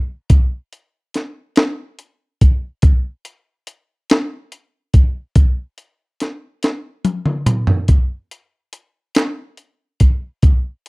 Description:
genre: gospel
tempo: 47 BPM (dotted quarters)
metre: 6/8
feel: straight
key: none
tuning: none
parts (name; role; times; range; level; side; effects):
- breakbeat sampler-style drum kit; drums; 0.3-10.9 s; hi-hat, kick drum, snare drum, toms; -13 LUFS; equal; none
- group handclap; percussion; 9.2-9.6 s; none; -27 LUFS; right 2 dB; none
room: light reverb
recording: dry, close 1970s-style studio recording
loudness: -15 LUFS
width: side -28 dB against mid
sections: 0.0-7.9 A section; 7.9-10.9 B section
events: drum fill 6.6-7.9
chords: none

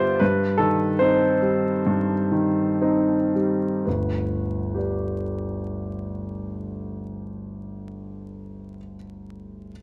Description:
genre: classical, romantic character piece for solo piano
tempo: 54-79 BPM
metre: 4/4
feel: rubato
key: G major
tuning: A4 = 438 Hz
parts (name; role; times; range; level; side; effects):
- bright concert grand piano; solo; 0.0-9.7 s; G1 to E5; -25 LUFS; equal; none
room: light reverb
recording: close, detailed microphones, vinyl crackle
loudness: -23 LUFS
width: mono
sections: 0.0-3.9 A section; 3.9-7.5 B section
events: slowing down 0.0-3.9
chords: 0.2 Cm/G; 3.9 G

